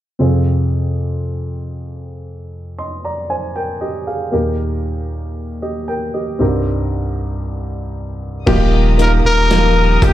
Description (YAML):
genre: pop ballad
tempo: 58 BPM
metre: 4/4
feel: straight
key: unclear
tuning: A4 = 440 Hz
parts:
  - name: warm baby grand piano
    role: accompaniment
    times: 0.2-10.1 s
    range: C2 to C6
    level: -18 LUFS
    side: equal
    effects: slapback echo
  - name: dark studio string section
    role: sustained chords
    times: 8.5-10.1 s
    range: G4 to Eb6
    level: -26 LUFS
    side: equal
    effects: none
  - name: picked steel-string acoustic guitar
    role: arpeggios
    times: 8.5-10.1 s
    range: Eb3 to G4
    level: -23 LUFS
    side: left 2 dB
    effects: slapback echo
  - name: saturated sub bass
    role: bass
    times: 8.5-10.1 s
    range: Eb1 to F1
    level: -14 LUFS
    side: equal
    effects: none
  - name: modern studio drum kit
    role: drums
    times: 8.5-10.1 s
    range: crash cymbal, hi-hat, kick drum, snare drum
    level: -18 LUFS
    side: equal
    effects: none
  - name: clear trumpet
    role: melody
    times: 9.0-10.1 s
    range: G4 to Bb4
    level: -15 LUFS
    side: left 2 dB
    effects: slapback echo
room: little or no reverb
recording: live gig heard through the venue's PA, club ambience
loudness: -15 LUFS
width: side -13 dB against mid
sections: 0.2-8.5 A section; 8.5-10.1 B section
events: none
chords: 0.2 Fm; 4.3 Eb; 6.4 Cm7; 8.5 Ebadd9